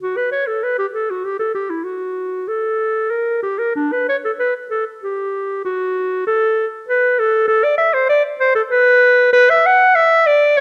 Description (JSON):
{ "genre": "classical, baroque-style fantasia for unaccompanied clarinet", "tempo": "97 BPM", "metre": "3/4", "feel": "rubato", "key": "unclear", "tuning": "A4 = 441 Hz", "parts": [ { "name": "warm clarinet", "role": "solo", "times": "0.0-10.6 s", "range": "D4 to F#5", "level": "-16 LUFS", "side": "equal", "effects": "none" } ], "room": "moderate recital hall reverb, RT60 1.4 s", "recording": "none", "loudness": "-16 LUFS", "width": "mono", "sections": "0.0-10.6 A section", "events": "none", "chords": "none" }